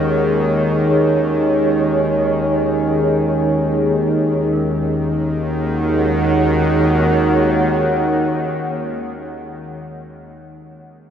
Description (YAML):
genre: dark ambient drone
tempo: free time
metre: none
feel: none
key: Eb minor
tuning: A4 = 440 Hz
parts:
  - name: deep dark ambient pad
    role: sustained chords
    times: 0.0-9.7 s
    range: Eb4 to Gb5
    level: -18 LUFS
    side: right 1 dB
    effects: chorus, built-in reverb
  - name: gamelan-type bronze metallophone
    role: arpeggios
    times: 0.0-9.1 s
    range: Eb3 to Bb3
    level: -40 LUFS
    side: equal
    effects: none
  - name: bowed-like drone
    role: drone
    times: 0.0-9.1 s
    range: Eb2 to Eb3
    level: -19 LUFS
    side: equal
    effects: built-in reverb
room: wet cathedral reverb, RT60 5.3 s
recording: none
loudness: -14 LUFS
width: side -8 dB against mid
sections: 0.0-4.5 A section; 4.5-9.2 B section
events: filter sweep on synth drone 0.0-4.5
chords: 0.0 Ebm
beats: free time